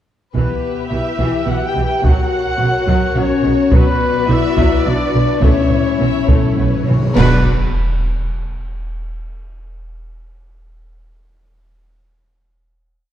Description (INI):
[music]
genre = cinematic, epic orchestral film score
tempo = 106 BPM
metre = 3/4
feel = straight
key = B minor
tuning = A4 = 440 Hz
[part]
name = warm symphonic violin section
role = melody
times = 0.3-7.5 s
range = B4 to G5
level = -26 LUFS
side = left 4 dB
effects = none
[part]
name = warm symphonic cello section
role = bass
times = 0.3-7.5 s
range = B2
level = -22 LUFS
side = right 3 dB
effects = none
[part]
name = warm symphonic violin section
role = second line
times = 0.4-7.5 s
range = A4 to E5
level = -27 LUFS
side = left 3 dB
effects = none
[part]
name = rich symphonic viola section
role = accompaniment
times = 0.4-7.5 s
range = C#3 to G4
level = -24 LUFS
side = right 1 dB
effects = none
[part]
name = mellow French horn section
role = sustained chords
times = 0.4-7.4 s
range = B3 to G4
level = -19 LUFS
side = left 6 dB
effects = none
[part]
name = clear trumpet section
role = stabs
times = 0.4-7.4 s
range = B4 to G5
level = -23 LUFS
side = right 1 dB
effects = none
[part]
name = warm symphonic double bass section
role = bass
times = 0.4-7.5 s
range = B1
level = -21 LUFS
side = right 3 dB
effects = none
[part]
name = taiko ensemble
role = drums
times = 0.4-6.8 s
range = none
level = -17 LUFS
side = equal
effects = none
[part]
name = cymbal swell, clash cymbals and concert bass drum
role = percussion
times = 3.7-8.3 s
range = none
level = -22 LUFS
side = equal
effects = none
[part]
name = timpani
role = percussion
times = 3.7-7.4 s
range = B2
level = -22 LUFS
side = equal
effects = none
[part]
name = reverse cymbal and sub drop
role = sound effects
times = 7.1-8.9 s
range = none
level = -27 LUFS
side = equal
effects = none
[sound]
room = moderate scoring stage reverb, RT60 2.2 s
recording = dark, warm production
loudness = -13 LUFS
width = side -11 dB against mid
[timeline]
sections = 0.4-7.2 theme; 7.2-8.9 final chord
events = timpani fill 5.4-7.2; reverse cymbal 7.1; band accent 7.2-7.8; impact 7.2-8.9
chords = 0.4 Em; 2.0 F#; 3.7 Bm; 5.4 Aadd9/B; 7.2 Bm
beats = | 0.36 0.93 1.49 | 2.05 2.61 3.17 | 3.73 4.29 4.86 | 5.43 6.00 6.58 | 7.17 7.75 8.34